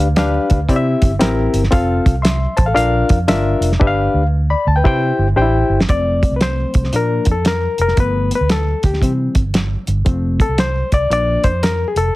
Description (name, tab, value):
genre	uptempo 1960s-style soul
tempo	115 BPM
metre	4/4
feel	swing 65% on 8ths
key	F major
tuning	A4 = 440 Hz
part	barky reed electric piano	accompaniment	0.0-12.2 s	E3 to C6	-17 LUFS	left 2 dB	none
part	vintage muted fingered electric bass	bass	0.0-12.1 s	F1 to C3	-18 LUFS	right 1 dB	none
part	cloth-damped thuddy drum kit	drums	0.2-12.0 s	hi-hat, kick drum, snare drum	-17 LUFS	right 1 dB	none
room	light reverb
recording	heavily compressed radio sound, multiband compression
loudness	-13 LUFS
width	side -18 dB against mid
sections	0.0-5.9 A section; 5.9-12.2 B section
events	drum fill 3.8-5.9; reed electric piano solo 5.9-12.2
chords	0.0 G7; 0.7 C; 1.7 F; 2.8 Bb; 3.8 G7; 4.8 C; 5.9 F; 6.9 Bb; 8.0 G7; 9.0 C; 10.1 F; 11.1 Bb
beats	0.17 0.69 1.21 | 1.73 2.25 2.77 3.29 | 3.81 4.33 4.85 5.37 | 5.89 6.41 6.93 7.45 | 7.97 8.50 9.02 9.54 | 10.06 10.58 11.10 11.62 | 12.14